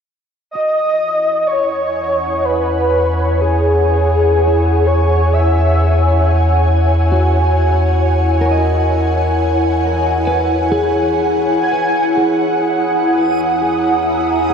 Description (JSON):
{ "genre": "ambient", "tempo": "62 BPM", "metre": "3/4", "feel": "straight", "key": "E lydian", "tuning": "A4 = 440 Hz", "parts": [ { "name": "breathy flute-like synth lead", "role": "melody", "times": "0.5-6.3, 11.6-14.5 s", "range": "G#4 to G#5", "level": "-18 LUFS", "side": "equal", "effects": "ensemble chorus, diffuse ambient delay" }, { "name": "ethereal airy pad", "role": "sustained chords", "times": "1.3-14.5 s", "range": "E4 to D#6", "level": "-16 LUFS", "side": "equal", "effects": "ensemble chorus, built-in reverb" }, { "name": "deep rumbling drone", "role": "bass", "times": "2.3-14.5 s", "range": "E2", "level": "-16 LUFS", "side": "equal", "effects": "built-in reverb" }, { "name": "clean electric guitar", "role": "arpeggios", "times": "0.6-14.5 s", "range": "E4 to F#5", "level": "-23 LUFS", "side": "left 1 dB", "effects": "diffuse ambient delay" }, { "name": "pedal harmonium", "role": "drone", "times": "12.1-14.5 s", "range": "E3 to B3", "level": "-35 LUFS", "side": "right 1 dB", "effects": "none" }, { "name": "backwards swelling texture", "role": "texture", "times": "13.2-14.5 s", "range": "D#6", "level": "-38 LUFS", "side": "equal", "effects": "built-in reverb" } ], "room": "wet cathedral reverb, RT60 4.9 s", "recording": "in a vast, echoing space", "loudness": "-12 LUFS", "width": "side -7 dB against mid", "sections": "0.5-12.1 A section; 12.1-14.5 B section", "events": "fade-in on clean electric guitar 0.5-12.1, 12.1-14.5; fade-in on soft synth lead 12.1-14.5", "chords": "0.5 Emaj9#11" }